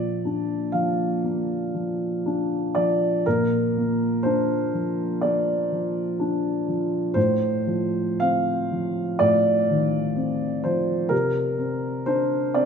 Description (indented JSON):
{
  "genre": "neoclassical minimalist piano",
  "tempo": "61 BPM",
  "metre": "4/4",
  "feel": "rubato",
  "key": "Bb major",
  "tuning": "A4 = 439 Hz",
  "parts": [
    { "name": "dark upright piano", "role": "solo", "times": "0.0-12.7 s", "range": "A2 to F5", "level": "-21 LUFS", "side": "equal", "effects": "none" }
  ],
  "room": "moderate concert hall reverb, RT60 2.0 s",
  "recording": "minimal, uncompressed stereo recording",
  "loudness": "-21 LUFS",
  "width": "side -6 dB against mid",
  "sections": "0.0-12.7 A section",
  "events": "none",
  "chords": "0.0 Bb; 7.2 F7/A; 11.1 Csus2",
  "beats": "0.27 1.26 2.25 | 3.25 4.23 5.21 6.19 | 7.16 8.21 9.20 10.16 | 11.11 12.07"
}